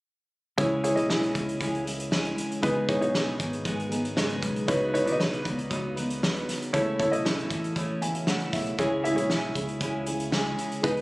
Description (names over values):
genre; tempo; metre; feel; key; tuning
piano-driven pop; 117 BPM; 4/4; straight; C# minor; A4 = 439 Hz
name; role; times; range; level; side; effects
warm upright piano; accompaniment; 0.6-11.0 s; C#3 to G#5; -28 LUFS; equal; none
fingerpicked steel-string acoustic guitar; riff; 0.6-11.0 s; C#3 to B4; -31 LUFS; right 1 dB; none
fingered electric bass; bass; 0.6-11.0 s; G#1 to C#2; -34 LUFS; equal; none
loose indie drum kit; drums; 0.6-11.0 s; hi-hat, kick drum, snare drum; -31 LUFS; equal; none
room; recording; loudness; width
light reverb; recorded on a phone in the room, studio ambience, compression; -25 LUFS; side -21 dB against mid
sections
0.6-11.0 A section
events
upright piano fill 7.8-8.8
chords
0.6 C#m; 2.6 G#m; 4.7 Badd9; 6.7 A; 8.8 C#m